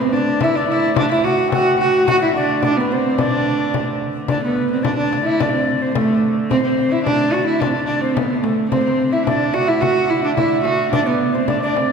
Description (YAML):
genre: medieval dance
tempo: 108 BPM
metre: 2/4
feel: straight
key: D mixolydian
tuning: A4 = 440 Hz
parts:
  - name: dark viola da gamba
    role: melody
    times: 0.0-11.9 s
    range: A3 to F#4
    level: -18 LUFS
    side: right 2 dB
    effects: none
  - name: alto recorder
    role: second line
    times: 0.0-11.9 s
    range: A4 to F#5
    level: -24 LUFS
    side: left 5 dB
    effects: none
  - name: hammered dulcimer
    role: second line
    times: 0.0-5.7, 8.7-11.9 s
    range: B4 to G5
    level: -24 LUFS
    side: right 4 dB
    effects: none
  - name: rich hurdy-gurdy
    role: drone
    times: 0.0-11.9 s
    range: D3 to A3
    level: -28 LUFS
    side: equal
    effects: none
  - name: frame drum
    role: percussion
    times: 0.1-11.9 s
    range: none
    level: -24 LUFS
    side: left 4 dB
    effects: none
room: wet concert hall reverb, RT60 2.3 s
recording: recorded in a church or concert hall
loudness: -15 LUFS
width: side -6 dB against mid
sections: 0.0-4.3 A section; 4.3-11.9 B section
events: none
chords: none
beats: 0.41 | 0.97 1.52 | 2.08 2.63 | 3.19 3.74 | 4.30 4.85 | 5.40 5.96 | 6.51 7.06 | 7.62 8.17 | 8.72 9.28 | 9.83 10.38 | 10.94 11.49